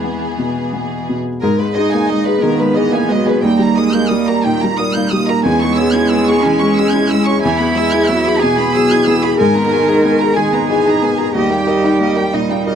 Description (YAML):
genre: neoclassical piano and strings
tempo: 60 BPM (dotted quarters)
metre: 6/8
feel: rubato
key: G# minor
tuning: A4 = 438 Hz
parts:
  - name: rich studio violin section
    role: melody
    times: 0.0-12.8 s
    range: G#4 to G#6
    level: -20 LUFS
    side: right 2 dB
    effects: none
  - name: rich cello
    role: second line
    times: 0.0-12.7 s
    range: E3 to A#4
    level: -18 LUFS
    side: right 5 dB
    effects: none
  - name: felt-muted upright piano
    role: accompaniment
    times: 0.0-12.8 s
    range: D#2 to A#4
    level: -16 LUFS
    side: left 3 dB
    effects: none
  - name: rich viola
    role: accompaniment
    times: 0.0-12.8 s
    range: D#3 to B3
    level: -21 LUFS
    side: right 3 dB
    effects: none
  - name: Celtic harp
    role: arpeggios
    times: 1.4-12.8 s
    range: B3 to G#5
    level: -22 LUFS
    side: left 2 dB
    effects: tape echo
room: light reverb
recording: dark, warm production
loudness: -12 LUFS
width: side -8 dB against mid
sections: 0.0-1.4 A section; 1.4-12.8 B section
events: none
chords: 0.0 E; 1.4 G#madd9; 3.4 D#; 5.4 C#m/E; 7.4 E; 9.4 G#madd9; 11.3 D#